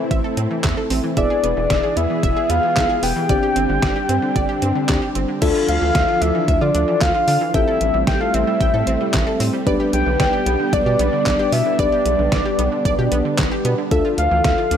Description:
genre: synth-pop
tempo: 113 BPM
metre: 4/4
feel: straight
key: unclear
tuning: A4 = 440 Hz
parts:
  - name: mellow FM electric piano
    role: accompaniment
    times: 0.0-14.8 s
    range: B3 to B4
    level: -24 LUFS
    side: left 3 dB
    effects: chorus
  - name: string machine, cellos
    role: sustained chords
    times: 0.0-14.8 s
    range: E3 to G#4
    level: -25 LUFS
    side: equal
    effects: ensemble chorus
  - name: analog pluck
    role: arpeggios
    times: 0.0-14.8 s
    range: D3 to G5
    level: -26 LUFS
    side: right 3 dB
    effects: chorus, ping-pong delay
  - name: rubbery square bass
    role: bass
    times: 0.1-14.8 s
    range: E1 to D3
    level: -22 LUFS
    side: right 1 dB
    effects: none
  - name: detuned 8-bit digital drum machine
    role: drums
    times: 0.1-14.8 s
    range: crash cymbal, handclaps, hi-hat, kick drum, snare drum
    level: -22 LUFS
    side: equal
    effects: overdrive
  - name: soft octave-layered synth lead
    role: melody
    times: 1.2-14.8 s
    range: D5 to G5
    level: -20 LUFS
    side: left 1 dB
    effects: chorus, ping-pong delay
room: light reverb, digital ambience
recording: none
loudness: -16 LUFS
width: side -8 dB against mid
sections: 0.0-5.4 A section; 5.4-14.8 B section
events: none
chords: 0.0 Am; 1.2 E; 3.3 Gsus4; 5.4 Dmadd9; 7.5 Am7; 9.7 G/B; 13.9 Dmadd9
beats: 0.11 0.64 | 1.17 1.70 2.23 2.76 | 3.29 3.83 4.36 4.89 | 5.42 5.95 6.48 7.01 | 7.54 8.07 8.61 9.14 | 9.67 10.20 10.73 11.26 | 11.79 12.32 12.85 13.38 | 13.91 14.45

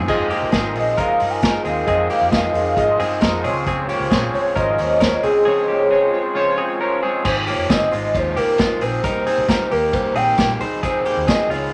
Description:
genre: jangly indie pop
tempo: 134 BPM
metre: 4/4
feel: straight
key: Ab major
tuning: A4 = 440 Hz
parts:
  - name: crunchy overdriven guitar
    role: accompaniment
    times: 0.0-11.7 s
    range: C3 to C5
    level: -29 LUFS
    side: equal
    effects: none
  - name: direct-recorded clean electric guitar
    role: arpeggios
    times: 0.0-11.7 s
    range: Ab3 to C5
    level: -27 LUFS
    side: equal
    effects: none
  - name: vintage muted fingered electric bass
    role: bass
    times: 0.0-11.7 s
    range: F1 to Ab2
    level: -32 LUFS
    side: equal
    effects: none
  - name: warbly lo-fi synth keys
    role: accompaniment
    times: 0.1-7.3 s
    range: F4 to Eb5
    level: -23 LUFS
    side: equal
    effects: chorus, phaser
  - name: vintage drum kit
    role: drums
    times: 0.1-11.6 s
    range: crash cymbal, hi-hat, kick drum, ride cymbal, snare drum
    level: -24 LUFS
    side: equal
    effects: none
  - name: tambourine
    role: percussion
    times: 0.1-11.6 s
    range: none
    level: -47 LUFS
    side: equal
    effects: none
  - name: hollow clarinet-like synth lead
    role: melody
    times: 0.8-11.6 s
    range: Ab4 to Ab5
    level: -22 LUFS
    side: equal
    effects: chorus
room: moderate large studio reverb, RT60 0.8 s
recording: none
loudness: -18 LUFS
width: mono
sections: 0.0-7.3 A section; 7.3-11.7 B section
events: none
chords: 0.0 Fm7; 3.4 Dbmaj7; 7.3 Ab6; 9.0 Cm7; 10.6 Ab6/C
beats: | 0.08 0.53 0.98 1.43 | 1.87 2.32 2.77 3.22 | 3.67 4.12 4.57 5.01 | 5.46 5.91 6.36 6.81 | 7.26 7.70 8.15 8.60 | 9.05 9.50 9.95 10.39 | 10.84 11.29

